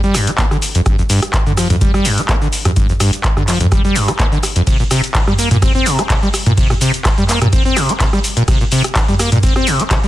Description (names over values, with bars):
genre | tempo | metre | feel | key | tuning
acid house | 126 BPM | 4/4 | swing 53% on 16ths | G minor | A4 = 442 Hz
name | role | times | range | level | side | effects
acid bass, saw | riff | 0.0-10.1 s | F2 to C4 | -16 LUFS | equal | overdrive, wide subtle chorus, ping-pong delay
booming analog drum machine | drums | 0.0-10.1 s | handclaps, hi-hat, ride cymbal, rim click, shaker, toms | -17 LUFS | equal | small room ambience
electronic kick drum | drums | 0.4-10.0 s | none | -16 LUFS | equal | small room ambience
room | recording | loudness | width
little or no reverb | dense, heavily limited modern master | -12 LUFS | side -15 dB against mid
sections
0.0-10.1 A section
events
none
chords
none